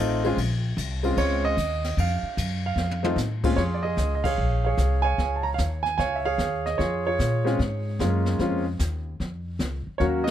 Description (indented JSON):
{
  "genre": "jazz piano trio",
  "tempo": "149 BPM",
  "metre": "4/4",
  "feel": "swing 66% on 8ths",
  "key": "Bb minor",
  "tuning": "A4 = 439 Hz",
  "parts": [
    { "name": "warm concert grand piano", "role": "melody", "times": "0.0-10.3 s", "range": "Bb2 to Bb5", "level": "-25 LUFS", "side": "right 2 dB", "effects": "plate reverb" },
    { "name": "upright bass", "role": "bass", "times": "0.0-10.3 s", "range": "A1 to Bb2", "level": "-26 LUFS", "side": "left 1 dB", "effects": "none" },
    { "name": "jazz brush drum kit", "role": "drums", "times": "0.2-10.3 s", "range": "brushed snare drum, crash cymbal, hi-hat, kick drum, ride cymbal, snare drum, toms", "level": "-32 LUFS", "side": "left 2 dB", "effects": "none" }
  ],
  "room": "light reverb",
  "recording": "none",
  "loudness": "-23 LUFS",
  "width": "side -10 dB against mid",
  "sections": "0.0-3.6 A section; 3.6-10.3 B section",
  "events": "grand piano solo 0.0-3.6; drum fill 2.8-3.2; band accent 4.2",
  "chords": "0.4 Bbm7; 2.0 F; 3.6 Bbm7"
}